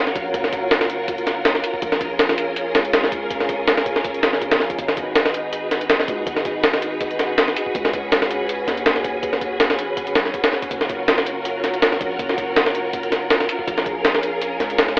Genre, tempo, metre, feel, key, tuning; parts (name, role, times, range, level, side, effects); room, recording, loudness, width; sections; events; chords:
drum and bass, jungle; 162 BPM; 4/4; swing 54% on 16ths; G# dorian; A4 = 438 Hz
soft string machine; sustained chords; 0.0-15.0 s; C#4 to B4; -23 LUFS; equal; ensemble chorus, vintage 12-bit sampler grit
long sustained 808-style bass; bass; 0.0-15.0 s; E#1 to D#2; -35 LUFS; equal
breakbeat sampler-style drum kit; drums; 0.1-15.0 s; hi-hat, kick drum, snare drum; -18 LUFS; equal; cassette tape
moderate studio reverb, RT60 0.5 s; home recording on cassette, telephone sound; -17 LUFS; side -28 dB against mid
0.0-15.0 A section
0.0 F#maj7; 1.8 A#m7; 4.8 G#m7; 10.7 F#maj7; 13.7 A#m7